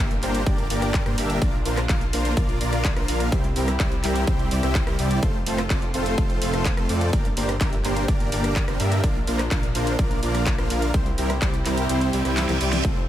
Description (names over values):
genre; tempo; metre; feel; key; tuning
EDM, festival progressive house; 126 BPM; 4/4; straight; unclear; A4 = 440 Hz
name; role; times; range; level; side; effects
dark studio string section; sustained chords; 0.0-13.1 s; C3 to G4; -33 LUFS; equal; sidechain pumping
dense compressed supersaw; riff; 0.0-13.0 s; G3 to F5; -25 LUFS; equal; sidechain pumping, tape echo
wide detuned saw bass; bass; 0.0-13.1 s; F1 to G2; -26 LUFS; equal; chorus, sidechain pumping
big-room dance drum kit; drums; 0.1-12.9 s; handclaps, hi-hat, rim click, snare drum; -30 LUFS; equal; overdrive, studio reverb
electronic kick drum; drums; 0.5-12.9 s; none; -23 LUFS; equal; overdrive, studio reverb
reverse cymbal; sound effects; 12.1-12.8 s; none; -30 LUFS; right 6 dB; none
room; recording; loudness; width
digital ambience; none; -20 LUFS; side -12 dB against mid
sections
0.0-13.1 A section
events
kick drops out 11.9-12.8; reverse cymbal 12.1-12.8; drum fill 12.4-12.8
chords
0.0 Gm; 1.4 Bb; 3.3 C; 5.2 F; 7.1 Gm; 9.0 Bb; 10.9 C